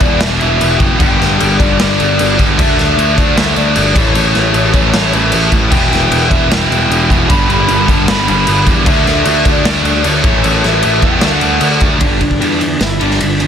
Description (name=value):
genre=hard rock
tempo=152 BPM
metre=4/4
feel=straight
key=unclear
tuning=A4 = 440 Hz
part: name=bluesy overdriven lead guitar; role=melody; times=0.0-13.5 s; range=B3 to B5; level=-18 LUFS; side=equal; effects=distortion
part: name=heavy high-gain guitar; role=riff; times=0.0-13.5 s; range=E2 to D4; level=-18 LUFS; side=right 12 dB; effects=distortion
part: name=overdriven semi-hollow guitar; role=riff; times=0.0-13.5 s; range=E2 to D4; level=-20 LUFS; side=left 12 dB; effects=none
part: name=tight distorted guitar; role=riff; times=0.0-12.0 s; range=E2 to D4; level=-18 LUFS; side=equal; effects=distortion
part: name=fuzz picked electric bass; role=bass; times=0.0-13.5 s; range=E1 to E2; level=-16 LUFS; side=equal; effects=overdrive
part: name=raw garage drum kit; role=drums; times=0.0-13.5 s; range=crash cymbal, kick drum, ride cymbal, snare drum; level=-13 LUFS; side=equal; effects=none
room=light reverb, studio reverb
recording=dense, heavily limited modern master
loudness=-9 LUFS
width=side -8 dB against mid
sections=0.0-12.0 A section; 12.0-13.5 B section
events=none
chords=0.0 E5; 1.0 G5; 2.6 D5; 4.0 A; 5.7 Em; 7.3 G; 8.9 D5; 10.2 A5; 11.2 D; 12.0 G5